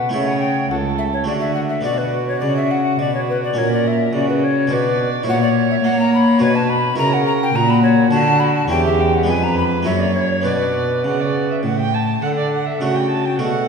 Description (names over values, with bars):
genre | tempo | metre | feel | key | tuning
classical, baroque-style sonata movement with continuo | 105 BPM | 3/4 | straight | B minor from 5.3 s | A4 = 440 Hz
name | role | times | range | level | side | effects
mellow hollow tenor recorder | melody | 0.0-13.7 s | F#4 to B5 | -20 LUFS | left 3 dB | none
dark violin | second line | 0.0-13.7 s | F#4 to A5 | -23 LUFS | right 5 dB | none
harpsichord | accompaniment | 0.0-13.7 s | C#2 to A4 | -23 LUFS | equal | none
rich cello | bass | 0.0-13.7 s | C#2 to A#3 | -19 LUFS | equal | none
room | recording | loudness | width
wet concert hall reverb, RT60 1.9 s | heard from further back in the room | -15 LUFS | side -5 dB against mid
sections
0.0-12.2 A section; 12.2-13.7 A section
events
none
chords
0.1 A/C#; 1.3 D; 1.9 Bm; 3.6 F#/A#; 4.7 Bm; 5.3 F#7/A#; 6.4 Bm; 7.0 F#7/C#; 8.1 D6; 8.7 C#dim/E; 9.3 Fdim7; 9.9 F#7; 10.4 Bm; 12.2 D